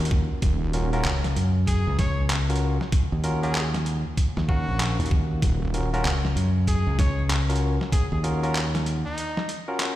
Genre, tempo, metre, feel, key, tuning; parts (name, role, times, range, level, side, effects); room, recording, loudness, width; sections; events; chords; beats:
glitch hop; 96 BPM; 4/4; swing 62% on 16ths; Eb minor; A4 = 440 Hz
barky tine electric piano; stabs; 0.0-10.0 s; Db4 to F5; -31 LUFS; left 1 dB; overdrive, sidechain pumping, ping-pong delay
modern bright fingered electric bass; bass; 0.0-9.0 s; Bb1 to Gb2; -24 LUFS; equal; tube saturation
boom bap sampler-style drum kit; drums; 0.1-10.0 s; handclaps, hi-hat, snare drum; -31 LUFS; equal; overdrive
electronic kick drum; drums; 0.1-8.1 s; -22 LUFS; equal
wobble bass; bass; 0.4-1.0, 5.0-6.0 s; Eb1 to Eb2; -25 LUFS; right 1 dB; chorus
clear trumpet; melody; 1.7-9.5 s; Eb4 to Db5; -34 LUFS; left 1 dB; ping-pong delay
light reverb, digital ambience; played on a big sound system in a bare room, large studio reverb; -22 LUFS; side -14 dB against mid
0.0-10.0 A section
break 9.2-10.0
0.0 Ebm7
| 0.43 1.05 1.68 2.30 | 2.93 3.55 4.18 4.80 | 5.43 6.05 6.68 7.30 | 7.93 8.55 9.18 9.80